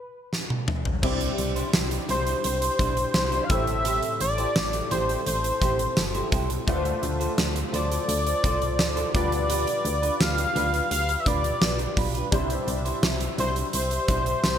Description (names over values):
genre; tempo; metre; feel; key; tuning
1980s-style pop; 85 BPM; 4/4; straight; C major; A4 = 439 Hz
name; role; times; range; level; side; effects
octave-doubled lead; melody; 0.0-14.6 s; B4 to F5; -27 LUFS; left 1 dB; chorus, digital delay
huge arena drum kit; drums; 0.3-14.6 s; crash cymbal, hi-hat, kick drum, snare drum, tambourine, toms; -27 LUFS; equal; none
warm baby grand piano; accompaniment; 1.0-14.6 s; A2 to D5; -34 LUFS; left 2 dB; ensemble chorus
electric guitar at the edge of break-up; riff; 1.0-14.5 s; D4 to C5; -33 LUFS; right 4 dB; analog chorus, digital delay
mellow synth brass; stabs; 1.0-14.6 s; C4 to E5; -34 LUFS; left 1 dB; chorus
solid FM bass; bass; 1.0-14.6 s; G1 to D2; -29 LUFS; equal; none
room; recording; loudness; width
moderate plate reverb, RT60 2.5 s; bright 1980s-style digital production; -22 LUFS; side -9 dB against mid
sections
0.0-1.0 A section; 1.0-14.6 B section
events
stop 0.0-1.0; drum fill 0.3-1.0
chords
0.0 N.C.; 1.0 Cadd9; 3.5 Am7; 6.7 Dm7; 9.1 G7/D; 12.3 Cadd9